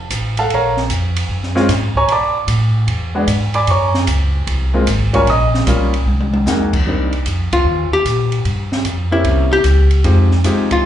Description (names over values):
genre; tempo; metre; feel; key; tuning
jazz, small-group swing and bop; 151 BPM; 4/4; swing 67% on 8ths; C minor from 6.9 s; A4 = 441 Hz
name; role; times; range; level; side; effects
upright bass; bass; 0.0-10.9 s; F1 to B2; -16 LUFS; equal; none
open jazz drum kit; drums; 0.1-10.8 s; crash cymbal, hi-hat, kick drum, ride cymbal, snare drum, toms; -22 LUFS; right 1 dB; none
warm baby grand piano; accompaniment; 0.4-10.9 s; G3 to Eb6; -17 LUFS; equal; slapback echo
archtop guitar, miked and amplified; melody; 7.5-10.9 s; E4 to G4; -16 LUFS; left 2 dB; slapback echo
room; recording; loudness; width
light reverb; live gig heard through the venue's PA, club reverb, nothing above 10.9 kHz; -13 LUFS; side -11 dB against mid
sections
0.0-6.9 A section; 6.9-10.9 B section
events
drum fill 6.1-6.5; band accent 7.5, 10.6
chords
0.0 F(b9); 0.5 Bbm7; 2.1 Bm7; 2.9 E9; 3.7 Gbmaj9#11; 5.3 Gm7b5; 6.1 C7alt; 6.9 Cm9; 8.5 Gm7b5; 9.3 C7b9; 10.1 Fm9